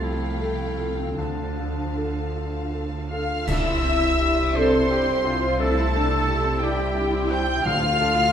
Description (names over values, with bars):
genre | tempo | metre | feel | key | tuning
cinematic, emotional film score for orchestra | 51-59 BPM (dotted quarters) | 6/8 | rubato | unclear | A4 = 442 Hz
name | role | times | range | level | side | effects
rich symphonic violin section | melody | 0.0-8.3 s | F5 to G6 | -30 LUFS | left 2 dB | none
bright clarinet | second line | 0.0-8.3 s | C4 to G5 | -31 LUFS | equal | none
warm symphonic violin section | second line | 0.0-8.3 s | G4 to G5 | -32 LUFS | left 3 dB | none
bright concert grand piano | accompaniment | 0.0-8.3 s | C2 to G5 | -30 LUFS | left 1 dB | none
warm symphonic viola section | accompaniment | 0.0-8.3 s | F3 to F4 | -33 LUFS | right 2 dB | none
rich studio cello section | bass | 0.0-8.3 s | C3 to A4 | -29 LUFS | right 2 dB | none
warm symphonic double bass section | bass | 0.0-8.3 s | C2 to D2 | -28 LUFS | right 2 dB | none
mellow large flute ensemble | second line | 3.1-8.3 s | G4 to G5 | -28 LUFS | left 2 dB | none
mellow oboe | second line | 3.1-8.3 s | G4 to G5 | -30 LUFS | equal | none
mellow French horn section | sustained chords | 3.1-8.3 s | G3 to G4 | -28 LUFS | left 2 dB | none
clash cymbals and concert bass drum | percussion | 3.5-4.9 s | none | -31 LUFS | equal | none
timpani | percussion | 7.7-8.3 s | D3 | -30 LUFS | right 2 dB | none
room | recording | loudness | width
wet recital hall reverb, RT60 1.3 s | minimal, uncompressed stereo recording | -20 LUFS | side -8 dB against mid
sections
0.0-3.5 A section; 3.5-8.3 B section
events
band accent 3.5-4.2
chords
0.0 F/C; 1.2 Dm; 3.5 Cadd9; 7.7 Dm